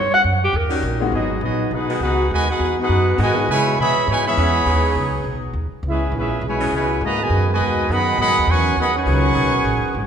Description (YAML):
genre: jazz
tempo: 204 BPM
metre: 4/4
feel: swing 63% on 8ths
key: G# minor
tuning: A4 = 441 Hz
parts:
  - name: breathy alto saxophone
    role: melody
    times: 0.0-0.8 s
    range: G4 to F#5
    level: -18 LUFS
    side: equal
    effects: none
  - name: upright bass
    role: bass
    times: 0.0-10.1 s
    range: G#1 to C#3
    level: -22 LUFS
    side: equal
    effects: none
  - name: bright saxophone section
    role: sustained chords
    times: 0.7-10.1 s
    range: D#3 to G#4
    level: -28 LUFS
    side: left 2 dB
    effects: none
  - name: clear grand piano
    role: accompaniment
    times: 1.0-1.1 s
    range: G#3 to F#4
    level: -27 LUFS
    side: left 6 dB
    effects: none
  - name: clear trumpet section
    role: melody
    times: 1.1-10.1 s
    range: B3 to C#6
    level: -20 LUFS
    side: right 1 dB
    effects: none
  - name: warm trombone section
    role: second line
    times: 1.1-10.1 s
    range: B2 to F#4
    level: -23 LUFS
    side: equal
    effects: none
room: wet scoring stage reverb, RT60 1.6 s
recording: recorded in a church or concert hall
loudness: -16 LUFS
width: side -8 dB against mid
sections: 0.0-1.1 A section; 1.1-10.1 B section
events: alto saxophone solo 0.0-1.1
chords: 0.0 D#7#9; 1.1 G#m7; 3.5 C#m7; 4.7 G#m7; 5.8 C#m7; 7.0 G#m7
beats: 0.25 0.54 0.84 | 1.13 1.42 1.72 2.01 | 2.31 2.60 2.89 3.19 | 3.48 3.78 4.07 4.36 | 4.66 4.95 5.25 5.54 | 5.83 6.13 6.42 6.72 | 7.01 7.30 7.60 7.89 | 8.19 8.48 8.78 9.07 | 9.36 9.66 9.95